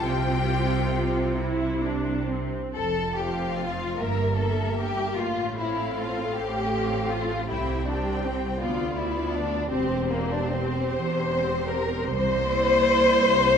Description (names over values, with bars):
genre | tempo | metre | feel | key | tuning
classical, slow romantic movement for string orchestra | 42-56 BPM (dotted quarters) | 6/8 | rubato | F major | A4 = 440 Hz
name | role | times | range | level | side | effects
rich studio violin section | melody | 0.0-13.6 s | C5 to G5 | -36 LUFS | left 6 dB | none
warm studio violin section | second line | 0.0-13.6 s | Bb3 to C5 | -25 LUFS | left 2 dB | none
warm studio viola section | accompaniment | 0.0-13.6 s | Bb3 to Bb4 | -30 LUFS | right 1 dB | none
warm studio cello section | bass | 0.0-13.6 s | C2 to C3 | -31 LUFS | right 2 dB | none
warm studio double bass section | bass | 0.0-13.6 s | E1 to D2 | -32 LUFS | right 2 dB | none
room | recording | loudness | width
moderate concert hall reverb, RT60 2.2 s | none | -23 LUFS | side -7 dB against mid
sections
0.0-2.8 A section; 2.8-13.6 B section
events
none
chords
0.0 Csus4; 1.4 C; 2.8 F5; 4.0 Edim/G; 5.2 F/A; 7.5 C5; 8.6 Bdim/D; 9.7 C/E; 12.0 C9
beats
| 0.04 1.42 | 2.75 3.98 | 5.17 6.35 | 7.47 8.60 | 9.69 10.93 | 12.04 13.16